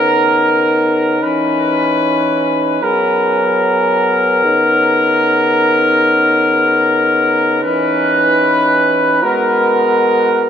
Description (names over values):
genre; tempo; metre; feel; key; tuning
hip hop; free time; none; none; B major; A4 = 440 Hz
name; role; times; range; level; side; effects
mellow brass ensemble; solo; 0.0-10.5 s; C#3 to B4; -11 LUFS; equal; dub echo
room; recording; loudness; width
moderate spring reverb, RT60 2.2 s; echo-heavy mix; -11 LUFS; side -8 dB against mid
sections
0.0-10.5 A section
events
none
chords
0.0 Bmaj9; 1.2 C#m9; 2.8 G#m9; 4.4 Bmaj9; 7.6 C#m9; 9.2 G#m9